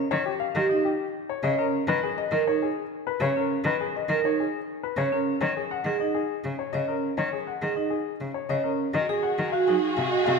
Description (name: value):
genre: classical, minimalist pattern music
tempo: 102 BPM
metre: 3/4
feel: straight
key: F# major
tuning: A4 = 436 Hz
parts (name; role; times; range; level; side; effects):
- clear grand piano; melody; 0.1-10.4 s; G4 to F#5; -29 LUFS; left 10 dB; none
- rich cello; accompaniment; 0.1-10.4 s; C3 to Gb3; -30 LUFS; left 1 dB; none
- vibraphone with medium mallets; arpeggios; 0.6-10.3 s; C#4 to C#5; -27 LUFS; right 6 dB; none
- warm clarinet; second line; 8.9-10.4 s; Gb4; -33 LUFS; right 2 dB; none
- dark studio string section; sustained chords; 8.9-10.4 s; Gb4 to Ab4; -30 LUFS; equal; none
- bright concert flute; arpeggios; 10.3 s; Eb5; -33 LUFS; left 2 dB; none
room: moderate scoring stage reverb, RT60 2.0 s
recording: none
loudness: -24 LUFS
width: side -4 dB against mid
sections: 0.0-8.9 A section; 8.9-10.4 B section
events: none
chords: 0.0 D#7; 1.9 G#madd9; 5.4 F#sus2 (rootless); 8.9 Ab7